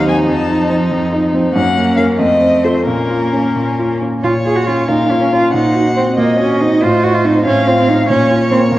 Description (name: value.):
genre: quick classical-period movement for piano quartet.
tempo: 86-96 BPM (dotted quarters).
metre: 6/8.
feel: rubato.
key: Bb minor.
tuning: A4 = 438 Hz.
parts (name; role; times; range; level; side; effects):
rich violin; melody; 0.0-8.8 s; Bb4 to A5; -20 LUFS; left 2 dB; none.
rich cello; second line; 0.0-8.8 s; F3 to Ab4; -16 LUFS; right 2 dB; none.
rich violin; second line; 0.0-8.8 s; C4 to Gb5; -19 LUFS; left 2 dB; none.
clear concert grand piano; accompaniment; 0.0-8.8 s; Eb2 to Bb4; -15 LUFS; equal; none.
room: wet scoring stage reverb, RT60 1.6 s.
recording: worn, warbling old tape, cassette tape, warbly pitch drift.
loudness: -11 LUFS.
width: side -15 dB against mid.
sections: 0.0-4.2 A section; 4.2-8.8 A section.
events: none.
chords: 0.3 F7; 1.6 Gb; 2.2 F7; 2.9 Bbm; 5.5 Cm7b5/Bb; 6.8 F7/A; 8.1 Bbm.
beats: | 0.27 0.91 | 1.55 2.20 | 2.87 3.56 | 4.24 4.90 | 5.53 6.18 | 6.82 7.45 | 8.09 8.72.